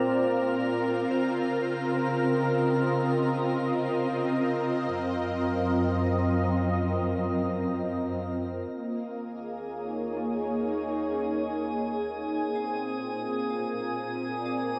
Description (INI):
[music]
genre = ambient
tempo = 63 BPM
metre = 4/4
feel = straight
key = Eb dorian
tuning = A4 = 441 Hz
[part]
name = warm analog pad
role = sustained chords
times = 0.0-14.8 s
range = Bb3 to Eb5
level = -30 LUFS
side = equal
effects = chorus
[part]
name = soft synth bell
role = arpeggios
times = 0.0-3.1, 10.2-14.8 s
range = C4 to Bb5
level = -39 LUFS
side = equal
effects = none
[part]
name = warm studio cello section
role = bass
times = 0.0-14.8 s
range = Eb2 to Db3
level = -36 LUFS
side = equal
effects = none
[part]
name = drifting glass-harmonics texture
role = texture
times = 0.0-14.8 s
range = Ab4 to Bb5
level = -39 LUFS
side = equal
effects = chorus, built-in reverb
[sound]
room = wet huge ambient reverb, RT60 8.0 s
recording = dark, warm production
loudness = -28 LUFS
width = mono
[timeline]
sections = 0.0-8.7 A section; 8.7-14.8 B section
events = fade-in on cello section 0.0-8.7; fade-out on synth texture 0.0-8.7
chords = 0.0 Bb; 1.1 Db; 4.9 Gb; 8.7 Eb5; 12.5 Bb